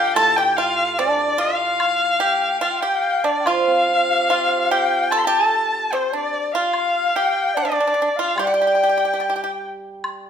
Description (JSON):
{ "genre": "chinese traditional, Chinese chamber ensemble", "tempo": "73 BPM", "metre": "2/4", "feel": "straight", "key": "G shang mode", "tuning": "A4 = 440 Hz", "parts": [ { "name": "rich erhu", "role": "melody", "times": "0.0-9.6 s", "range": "C5 to C6", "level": "-21 LUFS", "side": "equal", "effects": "none" }, { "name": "bright reedy large dizi", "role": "second line", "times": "0.0-9.6 s", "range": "C5 to A5", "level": "-22 LUFS", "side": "left 6 dB", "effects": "none" }, { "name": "pipa", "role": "second line", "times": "0.0-9.5 s", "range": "C4 to A4", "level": "-23 LUFS", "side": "right 5 dB", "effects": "none" }, { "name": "hammered dulcimer", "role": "accompaniment", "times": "0.0-10.3 s", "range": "A2 to C5", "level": "-24 LUFS", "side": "right 3 dB", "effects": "none" }, { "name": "woodblock", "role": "percussion", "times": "0.2-10.2 s", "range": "none", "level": "-29 LUFS", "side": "left 1 dB", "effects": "none" } ], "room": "moderate recital hall reverb, RT60 1.4 s", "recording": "minimal, uncompressed stereo recording", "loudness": "-17 LUFS", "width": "side -8 dB against mid", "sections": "0.0-10.1 A section", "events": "none", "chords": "none" }